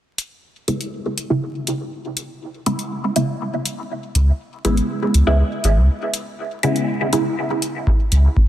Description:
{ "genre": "dub techno", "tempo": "121 BPM", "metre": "4/4", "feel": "straight", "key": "C# minor", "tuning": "A4 = 440 Hz", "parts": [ { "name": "electronic hi-hat", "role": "drums", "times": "0.2-8.2 s", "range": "none", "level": "-24 LUFS", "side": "left 1 dB", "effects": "none" }, { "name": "filtered dub chord stab", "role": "stabs", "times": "0.7-7.3 s", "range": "C#3 to E4", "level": "-21 LUFS", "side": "equal", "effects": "phaser, sidechain pumping, dub echo" }, { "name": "warm sub bass", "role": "bass", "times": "4.2-8.3 s", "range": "G#1 to C#2", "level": "-14 LUFS", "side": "equal", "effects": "sidechain pumping" }, { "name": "electronic kick drum", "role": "drums", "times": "7.9-8.5 s", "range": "none", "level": "-16 LUFS", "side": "equal", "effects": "none" } ], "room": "moderate echo chamber reverb, RT60 2.4 s", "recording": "dense, heavily limited modern master, vinyl crackle", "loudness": "-18 LUFS", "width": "side -12 dB against mid", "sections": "0.0-7.9 A section", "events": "filter sweep on synth stab 0.0-7.9; break 5.9-7.9", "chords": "0.0 C#m7; 7.9 N.C." }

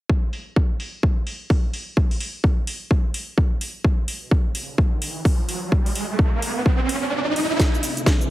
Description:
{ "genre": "bass house", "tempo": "128 BPM", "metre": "4/4", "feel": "swing 60% on 16ths", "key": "A minor", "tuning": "A4 = 440 Hz", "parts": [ { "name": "electronic kick drum", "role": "drums", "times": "0.1-8.2 s", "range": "none", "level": "-19 LUFS", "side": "equal", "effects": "overdrive" }, { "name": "house drum kit", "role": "drums", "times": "0.3-8.3 s", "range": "hi-hat, shaker, snare drum", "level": "-28 LUFS", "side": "equal", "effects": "overdrive, high-pass filter on hats, low-pass filter on hats, high-pass filter on snare, low-pass filter on snare, high-pass filter on perc, low-pass filter on perc, high-pass filter on room, low-pass filter on room" }, { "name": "riser", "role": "sound effects", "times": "4.9-8.3 s", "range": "none", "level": "-25 LUFS", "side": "right 2 dB", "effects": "none" }, { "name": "deep dark ambient pad", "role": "sustained chords", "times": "7.8-8.3 s", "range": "C4 to E5", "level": "-31 LUFS", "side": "left 1 dB", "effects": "chorus, built-in reverb, sidechain pumping" } ], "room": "light reverb", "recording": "heavily compressed radio sound, multiband compression", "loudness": "-20 LUFS", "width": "side -16 dB against mid", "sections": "0.1-7.6 A section", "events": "riser 4.9-7.6, 7.6-8.3; kick drops out 7.1-7.6; drum fill 7.6-8.3", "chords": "0.1 N.C.; 7.6 Amadd9" }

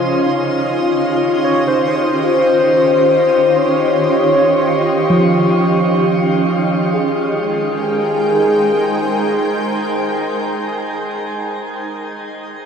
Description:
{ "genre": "ambient", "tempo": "free time", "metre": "none", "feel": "none", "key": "Ab major", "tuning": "A4 = 440 Hz", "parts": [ { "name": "shimmering ambient pad", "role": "sustained chords", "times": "0.0-11.1 s", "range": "Db3 to G5", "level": "-17 LUFS", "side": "equal", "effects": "chorus, built-in reverb" }, { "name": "muted felt-like synth keys", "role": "arpeggios", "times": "0.0-12.7 s", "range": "F3 to Eb5", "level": "-22 LUFS", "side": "right 2 dB", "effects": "chorus, diffuse ambient delay" }, { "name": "drifting glass-harmonics texture", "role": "texture", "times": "0.0-6.9 s", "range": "C6", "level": "-30 LUFS", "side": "right 1 dB", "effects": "chorus, built-in reverb" }, { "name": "warm velvety synth lead", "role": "melody", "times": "1.4-11.1 s", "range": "Ab4 to Db5", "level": "-17 LUFS", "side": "left 1 dB", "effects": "chorus, diffuse ambient delay" } ], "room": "wet shimmer reverb, RT60 8.4 s", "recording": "none", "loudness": "-13 LUFS", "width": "side -7 dB against mid", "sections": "0.0-6.9 A section; 6.9-10.3 B section", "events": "none", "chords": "0.2 Eb7; 6.9 Abmaj7" }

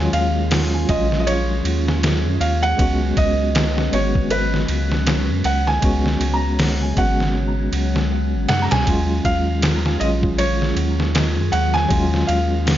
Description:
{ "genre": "trip hop", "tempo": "79 BPM", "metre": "4/4", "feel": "swing 59% on 16ths", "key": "Eb minor", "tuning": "A4 = 440 Hz", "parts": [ { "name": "felt-muted upright piano", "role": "melody", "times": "0.0-12.8 s", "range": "Cb5 to Bb5", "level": "-24 LUFS", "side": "right 2 dB", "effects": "tape echo" }, { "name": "tine electric piano", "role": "accompaniment", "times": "0.0-12.8 s", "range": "Gb3 to Gb4", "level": "-24 LUFS", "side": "equal", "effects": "tremolo" }, { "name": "warbly tape-like pad", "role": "sustained chords", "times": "0.0-12.8 s", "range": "Db3 to Db5", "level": "-27 LUFS", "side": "equal", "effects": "chorus, built-in reverb" }, { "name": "soft dub sub bass", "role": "bass", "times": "0.0-12.8 s", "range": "Ab1 to Gb2", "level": "-21 LUFS", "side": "equal", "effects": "none" }, { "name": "trip hop sampler-style drum kit", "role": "drums", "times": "0.1-12.8 s", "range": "hi-hat, kick drum, ride cymbal, snare drum", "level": "-22 LUFS", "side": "equal", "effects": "studio reverb" } ], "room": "light reverb", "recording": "nothing above 7.5 kHz", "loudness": "-16 LUFS", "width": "side -12 dB against mid", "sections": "0.0-12.8 A section", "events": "none", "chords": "0.0 Ebm11; 2.8 Db7sus4; 8.9 Ebm11" }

